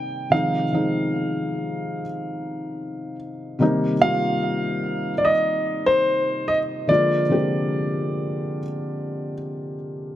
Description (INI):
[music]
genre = R&B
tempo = 73 BPM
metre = 4/4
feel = straight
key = C minor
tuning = A4 = 443 Hz
[part]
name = warm concert grand piano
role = melody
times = 0.0-9.3 s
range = C5 to G5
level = -23 LUFS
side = right 1 dB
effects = none
[part]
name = felt-muted upright piano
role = accompaniment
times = 0.0-10.2 s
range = C3 to G4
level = -24 LUFS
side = left 1 dB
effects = none
[sound]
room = light reverb, studio ambience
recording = none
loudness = -20 LUFS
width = side -12 dB against mid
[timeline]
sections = 0.0-10.2 A section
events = none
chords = 0.3 Fm7; 3.6 Cm7; 6.9 Bb7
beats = | 0.32 1.14 1.96 2.78 | 3.60 4.43 5.25 6.07 | 6.89 7.71 8.54 9.36